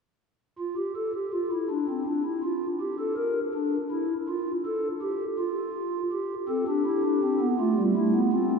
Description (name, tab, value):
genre	classical, baroque-style 4-part fugue for pipe organ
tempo	82 BPM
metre	4/4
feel	straight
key	F major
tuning	A4 = 440 Hz
part	pipe organ, stopped flute	solo	0.6-8.6 s	G3 to Bb4	-25 LUFS	equal	none
room	wet cathedral reverb, RT60 4.9 s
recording	recorded in a church or concert hall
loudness	-25 LUFS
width	side -5 dB against mid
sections	0.2-8.6 A section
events	none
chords	0.2 N.C.; 6.1 C5; 7.6 F